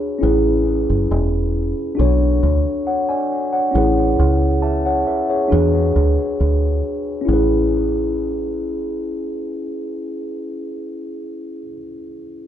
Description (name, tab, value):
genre	lovers rock reggae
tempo	68 BPM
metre	4/4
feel	straight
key	A major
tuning	A4 = 441 Hz
part	mellow tine electric piano	accompaniment	0.0-12.5 s	C#4 to A5	-19 LUFS	left 1 dB	slow stereo tremolo, tape echo
part	deep dub fingered electric bass	bass	0.2-11.7 s	E1 to E2	-18 LUFS	right 1 dB	none
room	wet studio reverb, RT60 0.9 s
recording	band playing live in one room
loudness	-16 LUFS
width	side -10 dB against mid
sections	0.0-7.3 A section; 7.3-10.8 B section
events	none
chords	0.2 Amaj7; 2.0 Bm7; 3.7 Amaj7; 5.5 E7; 7.3 Amaj7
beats	| 0.21 1.09 1.98 2.86 | 3.74 4.62 5.51 6.39 | 7.27 8.16 9.04 9.92